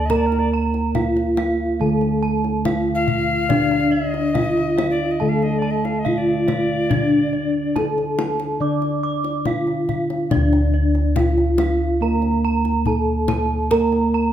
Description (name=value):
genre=Javanese gamelan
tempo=70 BPM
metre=4/4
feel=straight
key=D pelog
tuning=A4 = 439 Hz
part: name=gamelan-type bronze metallophone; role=melody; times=0.0-14.3 s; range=D4 to D5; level=-22 LUFS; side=left 1 dB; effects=none
part: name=alto recorder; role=second line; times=0.0-7.9 s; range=Bb4 to F5-27c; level=-26 LUFS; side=left 5 dB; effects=none
part: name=gamelan-type bronze metallophone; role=accompaniment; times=0.0-14.3 s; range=D3 to D4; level=-24 LUFS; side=right 4 dB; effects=none
part: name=gamelan-type bronze metallophone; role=arpeggios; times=0.0-14.3 s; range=D5 to D6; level=-27 LUFS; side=right 4 dB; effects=none
part: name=gamelan-type bossed gongs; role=bass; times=0.0-14.3 s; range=D2 to Bb4-20c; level=-23 LUFS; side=left 1 dB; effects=none
part: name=kendang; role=percussion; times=0.1-14.0 s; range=none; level=-27 LUFS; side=left 4 dB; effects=none
room=moderate recital hall reverb, RT60 1.8 s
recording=none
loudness=-17 LUFS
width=side -10 dB against mid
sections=0.0-10.3 A section; 10.3-14.3 A section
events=none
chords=none